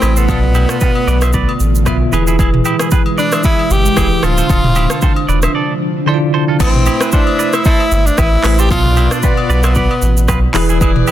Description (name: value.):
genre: afrobeats.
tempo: 114 BPM.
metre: 4/4.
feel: swing 55% on 16ths.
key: A harmonic minor.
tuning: A4 = 440 Hz.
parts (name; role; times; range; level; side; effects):
breathy tenor saxophone; melody; 0.0-10.6 s; B3 to G4; -18 LUFS; equal; ping-pong delay.
bell-like tine electric piano; accompaniment; 0.0-11.1 s; B2 to E5; -18 LUFS; equal; fast stereo tremolo.
ethereal airy pad; sustained chords; 0.0-6.6 s; B2 to A4; -23 LUFS; right 1 dB; ensemble chorus, built-in reverb.
clean electric guitar; riff; 0.0-11.1 s; E4 to E5; -22 LUFS; right 6 dB; ping-pong delay.
saturated sub bass; bass; 0.0-11.0 s; D1 to B1; -14 LUFS; equal; none.
afro-pop drum kit; drums; 0.0-11.1 s; crash cymbal, handclaps, hi-hat, kick drum, rim click, shaker, toms; -16 LUFS; equal; soft clipping on snare.
agogo bells and woodblock; percussion; 0.0-11.1 s; none; -26 LUFS; left 6 dB; none.
mellow horn section; second line; 6.6-11.1 s; E4 to E5; -23 LUFS; left 3 dB; none.
room: digital ambience.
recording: dense, heavily limited modern master.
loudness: -10 LUFS.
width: side -12 dB against mid.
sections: 0.0-6.6 A section; 6.6-11.1 B section.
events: none.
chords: 0.3 Bdim; 2.1 E; 4.2 Dm7; 6.6 Amadd9; 8.7 Bdim; 10.5 E.